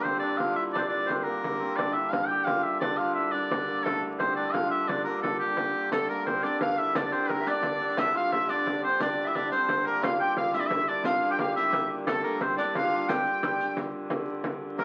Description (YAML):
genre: medieval dance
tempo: 117 BPM (dotted quarters)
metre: 6/8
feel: straight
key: G dorian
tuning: A4 = 440 Hz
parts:
  - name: bright shawm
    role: melody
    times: 0.0-14.8 s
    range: G4 to G5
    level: -30 LUFS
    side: equal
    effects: none
  - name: hammered dulcimer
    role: second line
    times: 0.0-14.8 s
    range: G3 to G4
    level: -35 LUFS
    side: equal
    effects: none
  - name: dark hurdy-gurdy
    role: drone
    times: 0.0-14.8 s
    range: G2 to D3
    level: -38 LUFS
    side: equal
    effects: none
  - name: frame drum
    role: percussion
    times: 0.1-14.8 s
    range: none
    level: -36 LUFS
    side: equal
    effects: none
  - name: bright reedy tenor recorder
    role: second line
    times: 5.9-14.8 s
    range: A4 to G5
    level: -36 LUFS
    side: equal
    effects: none
  - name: riq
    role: percussion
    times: 5.9-13.9 s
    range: none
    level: -41 LUFS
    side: equal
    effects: none
room: wet studio reverb, RT60 0.6 s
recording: very old 78 rpm record, vinyl crackle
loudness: -28 LUFS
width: mono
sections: 0.0-5.9 A section; 5.9-14.1 A section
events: none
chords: none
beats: 0.22 | 0.74 1.26 | 1.78 2.30 | 2.82 3.34 | 3.85 4.37 | 4.89 5.40 | 5.92 6.43 | 6.95 7.46 | 7.98 8.49 | 9.00 9.52 | 10.03 10.54 | 11.05 11.56 | 12.07 12.58 | 13.09 13.60 | 14.10 14.61